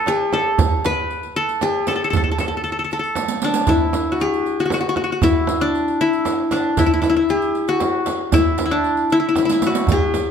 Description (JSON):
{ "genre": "Arabic maqam ensemble", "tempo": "116 BPM", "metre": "3/4", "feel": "straight", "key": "A maqam rast", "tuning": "A4 = 440 Hz", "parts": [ { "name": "qanun", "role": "melody", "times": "0.0-10.3 s", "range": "D4 to B4", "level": "-18 LUFS", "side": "left 2 dB", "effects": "none" }, { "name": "darbuka", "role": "percussion", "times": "0.1-10.3 s", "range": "none", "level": "-25 LUFS", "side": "right 3 dB", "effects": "none" }, { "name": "frame drum", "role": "percussion", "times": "0.1-10.3 s", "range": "none", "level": "-25 LUFS", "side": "right 5 dB", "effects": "none" }, { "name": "riq", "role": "percussion", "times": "0.1-10.3 s", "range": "none", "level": "-29 LUFS", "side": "right 6 dB", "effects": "none" } ], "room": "moderate recital hall reverb, RT60 1.4 s", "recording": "none", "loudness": "-16 LUFS", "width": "side -7 dB against mid", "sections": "0.0-3.7 A section; 3.7-10.3 B section", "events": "drum fill 3.2-3.7, 9.4-9.9", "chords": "none" }